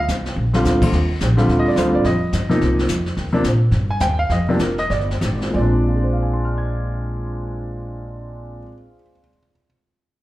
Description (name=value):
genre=jazz piano trio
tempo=182-215 BPM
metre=4/4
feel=swing 61% on 8ths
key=Bb mixolydian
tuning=A4 = 440 Hz
part: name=clear grand piano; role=melody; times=0.0-9.6 s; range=Eb2 to Ab6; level=-20 LUFS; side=equal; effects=slapback echo
part: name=upright bass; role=bass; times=0.0-8.6 s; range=F1 to Bb2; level=-20 LUFS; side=equal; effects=none
part: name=jazz brush drum kit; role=drums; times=0.1-5.8 s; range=brushed snare drum, crash cymbal, hi-hat, kick drum, snare drum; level=-26 LUFS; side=equal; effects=none
room=light reverb, small room ambience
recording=live gig heard through the venue's PA, club reverb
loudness=-16 LUFS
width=side -16 dB against mid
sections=0.9-5.5 A section; 5.5-8.2 B section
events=drum fill 0.4; slowing down 3.2-5.5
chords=0.4 Bb69; 2.0 F9sus4; 3.2 Eb; 4.3 Fsus24; 5.5 Bb9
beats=0.09 0.37 0.65 | 0.93 1.21 1.49 1.77 | 2.04 2.32 2.60 2.88 | 3.16 3.44 3.72 4.01 | 4.30 4.60 4.90 5.22 | 5.54 5.87 6.20 6.53 | 6.86 7.19 7.52 7.85